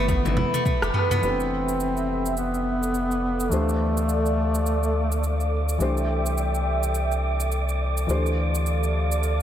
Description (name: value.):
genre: organic downtempo.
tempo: 105 BPM.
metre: 4/4.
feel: swing 59% on 16ths.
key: unclear.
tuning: A4 = 442 Hz.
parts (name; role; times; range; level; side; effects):
warm duduk; melody; 0.0-5.5 s; A3 to C4; -28 LUFS; left 1 dB; tape echo, shimmer reverb.
steel-string zither; arpeggios; 0.0-4.2 s; E3 to G4; -28 LUFS; right 1 dB; vintage 12-bit sampler grit, tape echo, shimmer reverb.
round analog bass; bass; 0.0-9.4 s; F1 to D2; -25 LUFS; equal; none.
afro-pop drum kit; drums; 0.1-9.4 s; cabasa, congas, rim click, toms; -29 LUFS; equal; small room reverb.
electronic kick drum; drums; 0.1-0.8 s; none; -25 LUFS; equal; small room reverb.
congas; percussion; 0.1-1.2 s; none; -34 LUFS; left 3 dB; none.
felt-muted upright piano; accompaniment; 1.2-9.4 s; E3 to C5; -31 LUFS; left 2 dB; sidechain pumping, tape echo, shimmer reverb.
warm analog pad; sustained chords; 1.2-9.4 s; A4 to G5; -30 LUFS; right 1 dB; chorus, sidechain pumping, shimmer reverb.
wind-like tuned noise texture; texture; 2.4-9.4 s; D5 to D6; -34 LUFS; equal; built-in reverb, shimmer reverb.
room: moderate lush hall reverb, RT60 2.4 s.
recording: none.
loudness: -21 LUFS.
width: side -10 dB against mid.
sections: 0.0-1.2 A section; 1.2-9.4 B section.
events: drum fill 0.1-1.2; band accent 0.8.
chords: 0.0 G9; 3.5 Dm7; 5.8 C6; 8.1 Dm7.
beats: 0.08 0.66 | 1.23 1.80 2.37 2.94 | 3.51 4.08 4.66 5.23 | 5.80 6.37 6.94 7.51 | 8.08 8.66 9.23.